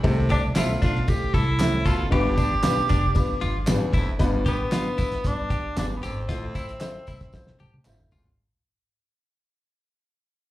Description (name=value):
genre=uptempo 1960s-style soul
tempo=115 BPM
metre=4/4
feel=straight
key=G mixolydian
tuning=A4 = 442 Hz
part: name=dark upright piano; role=accompaniment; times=0.0-8.4 s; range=G2 to D6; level=-29 LUFS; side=left 3 dB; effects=plate reverb, slapback echo
part: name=raspy baritone saxophone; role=riff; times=0.0-8.3 s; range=D2 to C3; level=-34 LUFS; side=right 3 dB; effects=slapback echo
part: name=upright bass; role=bass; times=0.0-8.3 s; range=F1 to G2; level=-26 LUFS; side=equal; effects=none
part: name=cloth-damped thuddy drum kit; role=drums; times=0.0-8.4 s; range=hi-hat, kick drum, ride cymbal, snare drum, toms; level=-25 LUFS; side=equal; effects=none
part: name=tambourine and handclaps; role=percussion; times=0.0-8.2 s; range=none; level=-40 LUFS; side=right 1 dB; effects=none
part: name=clear tenor saxophone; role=melody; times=0.3-7.9 s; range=B3 to G4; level=-28 LUFS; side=right 1 dB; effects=plate reverb, slapback echo
part: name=direct-recorded clean electric guitar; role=riff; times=0.3-8.3 s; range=D4 to A4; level=-34 LUFS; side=left 4 dB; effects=slapback echo
part: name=mellow electric guitar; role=stabs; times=0.6-8.0 s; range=D4 to F5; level=-35 LUFS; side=right 6 dB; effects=plate reverb, slapback echo
room=light reverb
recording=live gig heard through the venue's PA, club reverb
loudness=-21 LUFS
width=side -15 dB against mid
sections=0.0-4.2 A section; 4.2-8.4 B section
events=upright piano fill 3.2-4.2, 7.3-8.4; fade-out 4.2-8.4; drum fill 7.3-8.4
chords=0.0 C6; 2.1 G7; 6.3 Fmaj7/A